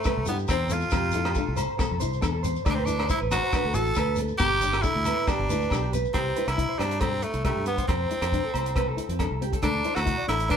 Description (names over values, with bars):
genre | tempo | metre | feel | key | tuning
highlife guitar band | 138 BPM | 4/4 | straight | C major | A4 = 439 Hz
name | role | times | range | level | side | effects
raspy tenor saxophone | melody | 0.0-10.6 s | A3 to A4 | -28 LUFS | right 1 dB | none
clean electric guitar | arpeggios | 0.0-10.6 s | C4 to E5 | -31 LUFS | right 2 dB | spring reverb
shekere | percussion | 0.0-6.1 s | none | -36 LUFS | left 3 dB | none
nylon-string guitar | accompaniment | 0.1-10.6 s | B3 to E4 | -35 LUFS | left 7 dB | none
compact cocktail drum kit | drums | 0.1-10.6 s | hi-hat, kick drum, rim click | -30 LUFS | equal | none
agogo bells | percussion | 0.1-10.6 s | none | -35 LUFS | equal | none
fingered electric bass | bass | 0.2-10.6 s | G1 to G2 | -30 LUFS | equal | none
room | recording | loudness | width
moderate studio reverb, RT60 0.8 s | band playing live in one room | -23 LUFS | side -8 dB against mid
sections
0.0-6.1 A section; 6.1-10.6 B section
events
none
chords
0.0 C; 0.9 F; 2.7 D; 4.4 G; 6.1 C; 7.9 F; 9.6 D